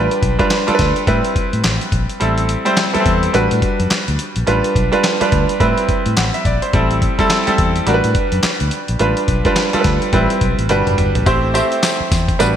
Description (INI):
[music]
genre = R&B, new jack swing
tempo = 106 BPM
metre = 4/4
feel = swing 60% on 16ths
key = A dorian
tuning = A4 = 440 Hz
[part]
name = bright grand piano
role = accompaniment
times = 0.0-12.6 s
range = G3 to F#5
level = -16 LUFS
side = right 1 dB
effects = none
[part]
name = vintage muted fingered electric bass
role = bass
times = 0.0-12.5 s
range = F#1 to A2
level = -19 LUFS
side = left 1 dB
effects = none
[part]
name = dusty soul sampler-style drum kit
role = drums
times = 0.1-12.6 s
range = handclaps, hi-hat, kick drum, snare drum, tambourine, toms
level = -19 LUFS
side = left 1 dB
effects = gated reverb
[sound]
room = moderate lush hall reverb, RT60 2.1 s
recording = bright 1980s-style digital production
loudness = -13 LUFS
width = side -9 dB against mid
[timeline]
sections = 0.0-11.3 A section; 11.3-12.6 B section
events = kick muted 2.2-2.8; drum fill 10.7-11.3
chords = 0.0 G7; 1.1 Cmaj7/A; 2.2 Am7; 3.3 Gmaj7/A; 4.5 G7/A; 5.6 Cmaj7/A; 6.7 Am7; 7.9 Gmaj7/A; 9.0 G7/A; 10.1 Cmaj7/A; 10.7 Gmaj7; 11.3 Am7